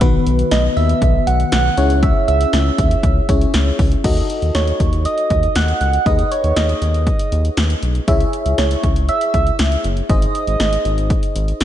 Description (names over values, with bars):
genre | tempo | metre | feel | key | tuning
synth-pop | 119 BPM | 4/4 | straight | C# minor | A4 = 440 Hz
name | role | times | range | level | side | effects
FM electric piano | accompaniment | 0.0-11.6 s | D#3 to E5 | -22 LUFS | left 2 dB | chorus
round analog bass | bass | 0.0-11.6 s | F#1 to D#2 | -17 LUFS | equal | none
punchy analog drum machine | drums | 0.0-11.6 s | crash cymbal, hi-hat, kick drum, snare drum | -19 LUFS | equal | none
soft struck synth lead | melody | 0.5-11.6 s | C#5 to F#5 | -20 LUFS | right 3 dB | chorus, tape echo
room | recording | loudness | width
moderate lush hall reverb, RT60 2.0 s | dreamy mix soaked in reverb, nothing above 11.0 kHz | -14 LUFS | side -11 dB against mid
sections
0.0-4.0 A section; 4.0-11.6 B section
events
none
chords
0.0 B; 1.8 C#m; 4.0 D#dim; 6.1 G#m/D#; 8.1 C#m; 10.1 G#